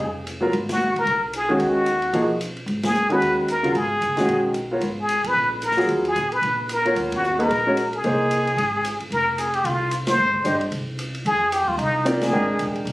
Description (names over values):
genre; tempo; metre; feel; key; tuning
modal jazz; 224 BPM; 4/4; swing 58% on 8ths; G# dorian, F dorian from 9.1 s; A4 = 440 Hz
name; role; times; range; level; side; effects
trumpet with plunger mute; melody; 0.0-12.7 s; Eb4 to C5; -21 LUFS; equal; none
upright bass; bass; 0.0-12.9 s; E1 to F2; -30 LUFS; equal; none
open jazz drum kit; drums; 0.0-12.9 s; hi-hat, kick drum, ride cymbal, snare drum; -32 LUFS; equal; none
warm grand piano; accompaniment; 0.4-12.9 s; C#3 to G5; -21 LUFS; equal; none
room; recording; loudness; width
moderate club reverb, RT60 0.5 s; recorded on a phone in the room, club reverb; -19 LUFS; side -18 dB against mid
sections
0.5-9.1 A section; 9.1-12.9 B section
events
band accent 0.7, 2.8, 5.2, 7.1, 10.0, 12.2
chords
0.0 Bb7(no3); 0.5 G#m11; 4.8 D#m/G#; 8.0 G#add9; 9.1 Fmadd9